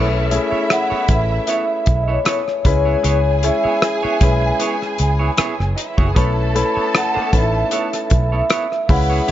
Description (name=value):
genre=lush 1970s-style soul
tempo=77 BPM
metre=4/4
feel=swing 54% on 16ths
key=unclear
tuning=A4 = 441 Hz
part: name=warm symphonic violin section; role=second line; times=0.0-9.3 s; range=D#4 to B5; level=-25 LUFS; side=right 2 dB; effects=none
part: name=warm grand piano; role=accompaniment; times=0.0-9.3 s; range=G#3 to C#5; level=-22 LUFS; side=left 3 dB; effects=none
part: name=semi-hollow electric guitar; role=riff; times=0.0-9.3 s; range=B3 to C#5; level=-28 LUFS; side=right 5 dB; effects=none
part: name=vintage muted fingered electric bass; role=bass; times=0.0-9.3 s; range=F#1 to C#2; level=-19 LUFS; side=equal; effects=none
part: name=warm soul drum kit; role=drums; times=0.3-9.3 s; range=hi-hat, kick drum, rim click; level=-18 LUFS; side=equal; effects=none
part: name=vibraphone with soft mallets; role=melody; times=0.7-9.3 s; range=C#5 to F#5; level=-21 LUFS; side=equal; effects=none
room=light reverb, studio ambience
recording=nothing above 7.7 kHz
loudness=-15 LUFS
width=side -12 dB against mid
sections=0.0-9.3 A section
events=none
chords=0.0 B9sus4; 2.6 C#m7; 6.2 B9sus4